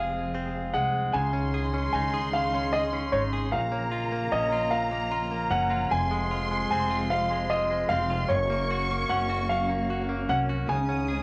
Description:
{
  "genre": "six-eight pop ballad",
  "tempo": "50 BPM (dotted quarters)",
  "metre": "6/8",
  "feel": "straight",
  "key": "unclear",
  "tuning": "A4 = 439 Hz",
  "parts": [
    { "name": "warm grand piano", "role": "melody", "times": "0.0-11.2 s", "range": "Db5 to Ab5", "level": "-31 LUFS", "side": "equal", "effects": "cassette tape, analog delay" },
    { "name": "direct-recorded clean electric guitar", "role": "accompaniment", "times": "0.0-11.2 s", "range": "F2 to Ab4", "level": "-34 LUFS", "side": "equal", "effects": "cassette tape" },
    { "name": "warm studio string section", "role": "sustained chords", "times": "0.0-11.2 s", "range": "C3 to Ab4", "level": "-39 LUFS", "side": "equal", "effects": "cassette tape" },
    { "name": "upright bass", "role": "bass", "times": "0.0-11.2 s", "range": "F1 to Db2", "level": "-34 LUFS", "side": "equal", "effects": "none" },
    { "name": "rich studio violin section", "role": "second line", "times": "1.1-11.2 s", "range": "Bb5 to Eb6", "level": "-35 LUFS", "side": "equal", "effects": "cassette tape" }
  ],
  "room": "light reverb, small room ambience",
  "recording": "home recording on cassette",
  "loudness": "-27 LUFS",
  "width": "mono",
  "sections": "0.0-1.1 A section; 1.1-11.2 B section",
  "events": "none",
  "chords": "0.0 Fm; 1.1 Dbsus2; 3.5 Bbm; 5.9 Fm; 8.3 Gb; 10.7 Dbsus2"
}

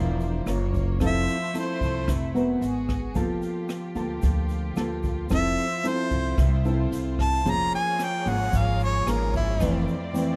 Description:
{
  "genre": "bossa nova",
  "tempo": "112 BPM",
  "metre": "4/4",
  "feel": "straight",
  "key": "F major",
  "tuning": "A4 = 441 Hz",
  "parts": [
    { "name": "nylon-string guitar", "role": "accompaniment", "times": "0.0-10.4 s", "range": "F2 to Bb4", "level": "-30 LUFS", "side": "equal", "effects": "none" },
    { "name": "warm studio violin section", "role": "sustained chords", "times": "0.0-10.4 s", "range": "A3 to D5", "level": "-40 LUFS", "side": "equal", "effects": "none" },
    { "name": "upright bass", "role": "bass", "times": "0.0-9.9 s", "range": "E1 to D2", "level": "-29 LUFS", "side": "equal", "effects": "none" },
    { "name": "jazz brush drum kit", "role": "drums", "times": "0.2-10.3 s", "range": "hi-hat, kick drum, rim click", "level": "-33 LUFS", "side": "equal", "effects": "none" },
    { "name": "tube shaker", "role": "percussion", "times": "0.2-10.4 s", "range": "none", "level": "-52 LUFS", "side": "equal", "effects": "none" },
    { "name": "warm harmonica", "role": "melody", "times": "1.1-2.1, 5.3-9.8 s", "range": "E4 to Bb5", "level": "-29 LUFS", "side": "equal", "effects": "none" }
  ],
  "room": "light reverb",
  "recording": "close, detailed microphones",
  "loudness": "-25 LUFS",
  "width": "mono",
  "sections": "0.0-10.4 A section",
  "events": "harmonica solo 0.0-10.4",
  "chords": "0.5 Gbmaj7; 1.0 Fmaj7; 2.6 Abm9; 3.2 Gm9/F; 5.3 Fmaj7; 7.5 Db6/F; 9.6 Dm9/F"
}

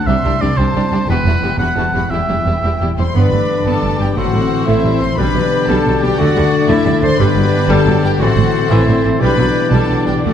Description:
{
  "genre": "cinematic, heroic adventure film score",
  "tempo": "118 BPM (dotted quarters)",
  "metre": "6/8",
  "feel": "straight",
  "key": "E minor, G major from 3.1 s",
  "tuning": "A4 = 444 Hz",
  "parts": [
    { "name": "clear symphonic violin section", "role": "melody", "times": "0.0-10.3 s", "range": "E5 to C6", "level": "-25 LUFS", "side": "left 2 dB", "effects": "none" },
    { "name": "bright oboe", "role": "second line", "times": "0.0-10.3 s", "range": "B4 to F#5", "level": "-22 LUFS", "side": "right 1 dB", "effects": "none" },
    { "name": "concert harp", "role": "arpeggios", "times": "0.0-10.3 s", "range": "G2 to C6", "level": "-21 LUFS", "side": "left 8 dB", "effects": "none" },
    { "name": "rich symphonic violin section", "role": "second line", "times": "0.1-10.3 s", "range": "D4 to C5", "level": "-25 LUFS", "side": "left 3 dB", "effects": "none" },
    { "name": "clear symphonic viola section", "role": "accompaniment", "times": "0.1-10.3 s", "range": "D3 to D4", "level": "-21 LUFS", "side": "right 2 dB", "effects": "none" },
    { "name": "clear symphonic double bass section", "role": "bass", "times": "0.1-10.3 s", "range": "E1 to D2", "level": "-20 LUFS", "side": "right 3 dB", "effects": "none" },
    { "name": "rich symphonic cello section", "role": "bass", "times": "0.1-10.3 s", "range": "C2 to D3", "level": "-19 LUFS", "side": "right 2 dB", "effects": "none" },
    { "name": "warm clarinet", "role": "second line", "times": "3.0-10.3 s", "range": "E4 to C5", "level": "-22 LUFS", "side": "left 2 dB", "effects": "none" },
    { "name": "mellow concert flute", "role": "second line", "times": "3.2-10.3 s", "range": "D6 to A6", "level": "-26 LUFS", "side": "left 2 dB", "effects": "none" },
    { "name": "dark French horn section", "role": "sustained chords", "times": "3.2-10.3 s", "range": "B3 to B4", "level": "-21 LUFS", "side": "left 5 dB", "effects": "none" },
    { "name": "dark trombone section", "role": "sustained chords", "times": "3.2-10.3 s", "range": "D3 to B3", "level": "-22 LUFS", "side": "right 2 dB", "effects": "none" },
    { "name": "timpani", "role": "percussion", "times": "7.2-7.7 s", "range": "G2", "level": "-22 LUFS", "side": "equal", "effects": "none" }
  ],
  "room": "wet scoring stage reverb, RT60 1.8 s",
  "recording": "dark, warm production",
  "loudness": "-12 LUFS",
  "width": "side -9 dB against mid",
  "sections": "0.0-3.1 A section; 3.1-10.3 B section",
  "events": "none",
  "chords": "0.1 Csus2; 1.1 Emadd9; 2.1 Em; 3.1 G; 4.2 Am; 5.2 G/B; 6.2 D; 7.2 G; 8.2 Am; 9.2 G/B"
}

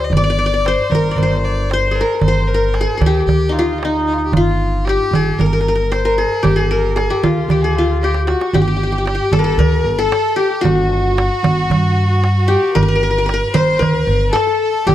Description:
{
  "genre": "Arabic maqam ensemble",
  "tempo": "114 BPM",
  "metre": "4/4",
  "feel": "straight",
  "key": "G maqam bayati, G maqam suznak from 8.5 s",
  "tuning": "A4 = 437 Hz",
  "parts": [
    { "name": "qanun", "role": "melody", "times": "0.0-14.9 s", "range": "Eb4 to D5", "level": "-17 LUFS", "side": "left 2 dB", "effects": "slapback echo" },
    { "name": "clear violin", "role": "second line", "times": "0.0-14.9 s", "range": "Eb4 to Eb5", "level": "-24 LUFS", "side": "left 2 dB", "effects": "none" },
    { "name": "upright bass", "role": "bass", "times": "0.0-14.9 s", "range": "G1 to G2", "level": "-18 LUFS", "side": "equal", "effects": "none" },
    { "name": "darbuka", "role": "percussion", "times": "0.1-14.9 s", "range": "none", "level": "-18 LUFS", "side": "right 4 dB", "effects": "none" },
    { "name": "rich studio violin section", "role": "second line", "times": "8.3-14.9 s", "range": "F#4 to C5", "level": "-23 LUFS", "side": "right 3 dB", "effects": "none" }
  ],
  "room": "little or no reverb",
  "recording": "dry, close 1970s-style studio recording",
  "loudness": "-13 LUFS",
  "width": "side -12 dB against mid",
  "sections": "0.0-8.5 A section; 8.5-14.9 B section",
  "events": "drum fill 8.0-8.5",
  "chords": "none"
}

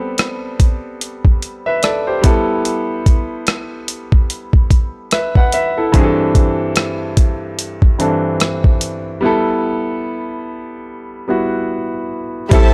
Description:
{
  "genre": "contemporary R&B",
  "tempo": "73 BPM",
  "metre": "4/4",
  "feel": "swing 58% on 16ths",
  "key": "unclear",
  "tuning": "A4 = 440 Hz",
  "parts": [
    { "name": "clear concert grand piano", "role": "accompaniment", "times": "0.0-12.7 s", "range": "G2 to F#5", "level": "-20 LUFS", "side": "equal", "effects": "none" },
    { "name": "dusty soul sampler-style drum kit", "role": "drums", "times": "0.2-12.7 s", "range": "hi-hat, kick drum, rim click", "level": "-15 LUFS", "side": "equal", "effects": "none" },
    { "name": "warm studio string section", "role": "sustained chords", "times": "12.5-12.7 s", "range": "G4 to A5", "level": "-22 LUFS", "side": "equal", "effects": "none" },
    { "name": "clean 808-style bass", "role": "bass", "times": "12.5-12.7 s", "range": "A1", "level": "-14 LUFS", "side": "equal", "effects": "none" }
  ],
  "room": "studio reverb",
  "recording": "dry, gritty hardware recording",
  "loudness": "-16 LUFS",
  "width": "mono",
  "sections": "0.0-12.5 A section",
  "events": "break 9.2-12.5",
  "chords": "0.0 Am9; 2.2 G69; 5.9 C69/G; 9.2 G69"
}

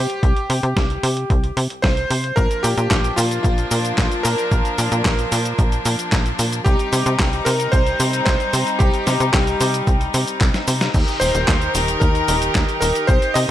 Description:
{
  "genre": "italo disco",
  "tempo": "112 BPM",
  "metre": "4/4",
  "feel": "straight",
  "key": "C minor",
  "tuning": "A4 = 440 Hz",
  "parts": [
    { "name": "bright electric grand piano", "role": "melody", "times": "0.0-13.5 s", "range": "F4 to Eb5", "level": "-23 LUFS", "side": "equal", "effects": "ping-pong delay" },
    { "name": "tight sequencer bass", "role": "bass", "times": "0.0-13.5 s", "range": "Eb1 to C3", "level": "-21 LUFS", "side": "equal", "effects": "tube saturation" },
    { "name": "dusty soul sampler-style drum kit", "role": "drums", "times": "0.1-13.5 s", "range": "cabasa, crash cymbal, handclaps, hi-hat, snare drum", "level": "-23 LUFS", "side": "equal", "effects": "small room reverb" },
    { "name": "electronic kick drum", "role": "drums", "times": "0.2-13.2 s", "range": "none", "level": "-18 LUFS", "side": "equal", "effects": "small room reverb" },
    { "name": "bright chamber string section", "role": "sustained chords", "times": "2.4-13.5 s", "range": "Eb3 to Bb4", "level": "-23 LUFS", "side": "left 1 dB", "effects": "none" }
  ],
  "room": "light reverb",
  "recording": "none",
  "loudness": "-16 LUFS",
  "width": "side -12 dB against mid",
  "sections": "0.0-10.9 A section; 10.9-13.5 B section",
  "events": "drum fill 10.4-10.9",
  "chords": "0.0 C5; 2.4 Bb; 6.7 Cm; 10.9 Eb"
}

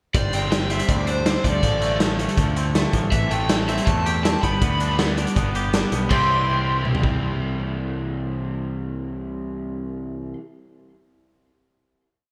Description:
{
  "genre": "indie rock",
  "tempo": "161 BPM",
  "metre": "4/4",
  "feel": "straight",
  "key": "C major",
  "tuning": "A4 = 440 Hz",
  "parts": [
    { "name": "raw garage guitar", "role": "melody", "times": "0.1-10.3 s", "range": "C5 to C6", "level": "-28 LUFS", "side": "equal", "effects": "overdrive, lush chorus, delay" },
    { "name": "raw garage guitar", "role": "riff", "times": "0.1-10.4 s", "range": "A2 to C5", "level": "-31 LUFS", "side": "equal", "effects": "overdrive, lush chorus" },
    { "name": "twangy electric guitar", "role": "riff", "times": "0.1-10.4 s", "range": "E3 to G4", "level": "-31 LUFS", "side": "equal", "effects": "analog chorus" },
    { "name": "growling picked electric bass", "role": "bass", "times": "0.1-10.3 s", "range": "G1 to E2", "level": "-28 LUFS", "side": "equal", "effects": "overdrive" },
    { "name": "raw garage drum kit", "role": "drums", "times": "0.1-7.1 s", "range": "crash cymbal, hi-hat, kick drum, snare drum, toms", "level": "-25 LUFS", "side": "equal", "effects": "gated reverb" }
  ],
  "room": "moderate lush hall reverb, RT60 1.7 s, small room ambience",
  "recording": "bright 1980s-style digital production",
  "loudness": "-22 LUFS",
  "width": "mono",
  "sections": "0.1-6.1 pre-chorus; 6.1-9.1 final chord",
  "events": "none",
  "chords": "0.1 Gsus4; 1.4 Dm7; 3.1 Am7; 4.4 G; 6.1 C"
}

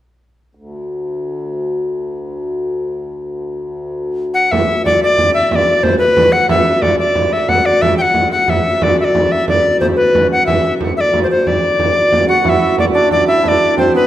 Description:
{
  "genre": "medieval dance",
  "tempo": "121 BPM (dotted quarters)",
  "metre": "6/8",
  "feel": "straight",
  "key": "D mixolydian",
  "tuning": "A4 = 440 Hz",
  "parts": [
    { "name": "hand-pumped harmonium", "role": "drone", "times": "0.6-14.1 s", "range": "D2", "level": "-20 LUFS", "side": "left 1 dB", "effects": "none" },
    { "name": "bright reedy tenor recorder", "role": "melody", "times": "4.3-14.1 s", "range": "B4 to G5", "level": "-12 LUFS", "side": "left 1 dB", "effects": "tape echo" },
    { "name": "frame drum", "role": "percussion", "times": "4.5-13.9 s", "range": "none", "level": "-18 LUFS", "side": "right 2 dB", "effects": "none" },
    { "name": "hammered dulcimer", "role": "second line", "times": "12.3-14.1 s", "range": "B3 to F#4", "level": "-16 LUFS", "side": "right 6 dB", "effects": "none" }
  ],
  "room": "wet recital hall reverb, RT60 1.3 s",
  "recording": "faint mains hum",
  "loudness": "-12 LUFS",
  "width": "side -12 dB against mid",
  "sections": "0.6-4.5 A section; 4.5-12.4 B section; 12.4-14.1 B section",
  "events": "none",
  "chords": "none"
}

